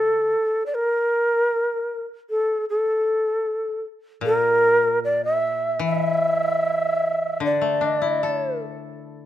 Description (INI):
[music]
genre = japanese traditional, Japanese chamber music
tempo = 76 BPM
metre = 4/4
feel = rubato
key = unclear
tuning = A4 = 440 Hz
[part]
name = breathy mellow shakuhachi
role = melody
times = 0.0-8.6 s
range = A4 to E5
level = -20 LUFS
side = equal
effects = none
[part]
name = koto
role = accompaniment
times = 0.0-9.3 s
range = Bb2 to A4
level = -28 LUFS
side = left 7 dB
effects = none
[sound]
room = light reverb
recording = close, detailed microphones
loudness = -20 LUFS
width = side -12 dB against mid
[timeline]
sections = 0.0-9.3 A section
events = none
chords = none